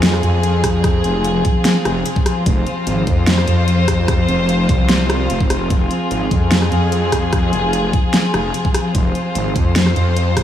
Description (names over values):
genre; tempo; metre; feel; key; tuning
heavy wobble dubstep; 148 BPM; 4/4; half-time; F minor; A4 = 440 Hz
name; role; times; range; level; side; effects
warm chamber string section; sustained chords; 0.0-10.4 s; F3 to C5; -18 LUFS; equal; sidechain pumping
wobble bass; bass; 0.0-10.4 s; F1 to F2; -18 LUFS; equal; chorus, overdrive
dubstep drum kit; drums; 0.0-10.4 s; hi-hat, rim click, snare drum; -21 LUFS; equal; overdrive
electronic kick drum; drums; 0.6-10.4 s; none; -18 LUFS; equal; overdrive
room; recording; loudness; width
light reverb; small room ambience; -14 LUFS; side -10 dB against mid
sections
0.0-10.4 A section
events
none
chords
0.0 Fm